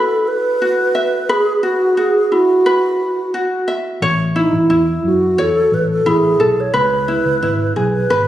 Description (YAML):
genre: pop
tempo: 88 BPM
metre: 4/4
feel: straight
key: E major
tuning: A4 = 440 Hz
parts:
  - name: hollow alto flute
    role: melody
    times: 0.0-8.3 s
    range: D#4 to C#5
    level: -15 LUFS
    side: right 1 dB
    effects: digital delay
  - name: ukulele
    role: accompaniment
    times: 0.0-8.3 s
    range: E4 to E5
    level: -18 LUFS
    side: equal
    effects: none
  - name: vintage muted fingered electric bass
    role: bass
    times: 4.0-8.3 s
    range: G#1 to F#2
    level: -20 LUFS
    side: left 1 dB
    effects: none
room: moderate concert hall reverb, RT60 1.8 s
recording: recorded on a phone in the room, studio reverb, compression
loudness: -13 LUFS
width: side -12 dB against mid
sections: 0.0-8.3 A section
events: none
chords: 0.0 Esus2; 4.0 A; 6.7 C#m7